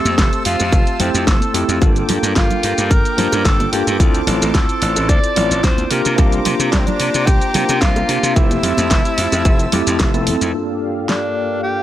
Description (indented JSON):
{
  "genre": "nu-disco, nu disco",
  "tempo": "110 BPM",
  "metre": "4/4",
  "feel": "swing 53% on 16ths",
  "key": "G dorian",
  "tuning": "A4 = 439 Hz",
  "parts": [
    { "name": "breathy tenor saxophone", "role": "melody", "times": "0.0-11.8 s", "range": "C4 to D5", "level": "-21 LUFS", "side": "equal", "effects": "vintage 12-bit sampler grit, tape echo" },
    { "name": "tine electric piano", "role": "accompaniment", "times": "0.0-11.8 s", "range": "G2 to E5", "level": "-21 LUFS", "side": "equal", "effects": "medium stereo tremolo, sidechain pumping, low-pass filter" },
    { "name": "lush unison pad", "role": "sustained chords", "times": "0.0-11.8 s", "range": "Bb3 to E6", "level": "-26 LUFS", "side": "equal", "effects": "chorus, sidechain pumping" },
    { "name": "glassy slap bass", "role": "bass", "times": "0.1-10.5 s", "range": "F1 to C3", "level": "-20 LUFS", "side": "equal", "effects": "none" },
    { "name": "pop drum kit", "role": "drums", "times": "0.1-11.2 s", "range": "hi-hat, shaker, snare drum", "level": "-21 LUFS", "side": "equal", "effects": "none" },
    { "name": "bongos and congas", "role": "percussion", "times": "0.1-10.2 s", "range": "none", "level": "-24 LUFS", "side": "right 3 dB", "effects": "none" },
    { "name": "electronic kick drum", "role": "drums", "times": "0.2-10.1 s", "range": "none", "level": "-15 LUFS", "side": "equal", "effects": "none" }
  ],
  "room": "digital ambience",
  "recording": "none",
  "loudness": "-13 LUFS",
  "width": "side -13 dB against mid",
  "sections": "0.0-10.5 A section; 10.5-11.8 B section",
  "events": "filter sweep on tine electric piano 10.5-11.8; filter sweep on analog synth pad 10.5-11.8",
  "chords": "0.0 Fmaj7; 1.8 Gm7; 4.0 Dm7; 5.9 C9sus4; 8.4 Fmaj7; 10.5 Gm7"
}